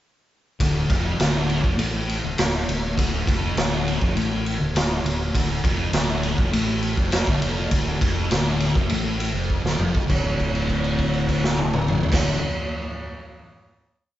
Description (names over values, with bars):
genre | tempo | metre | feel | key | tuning
psychedelic rock | 101 BPM | 4/4 | straight | D minor | A4 = 440 Hz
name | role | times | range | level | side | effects
thick fuzz guitar | riff | 0.6-12.4 s | D2 to D3 | -25 LUFS | left 1 dB | distortion, phaser
fingered electric bass | bass | 0.6-12.4 s | D1 to A1 | -27 LUFS | equal | none
raw garage drum kit | drums | 0.6-12.3 s | crash cymbal, kick drum, ride cymbal, snare drum, toms | -23 LUFS | equal | none
room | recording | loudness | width
moderate stone room reverb, RT60 1.2 s | band playing live in one room, nothing above 7.8 kHz | -20 LUFS | side -13 dB against mid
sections
0.6-10.1 riff; 10.1-12.5 final chord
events
drum fill 9.5-10.1; held note 10.1-12.1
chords
0.6 Dm; 10.1 D5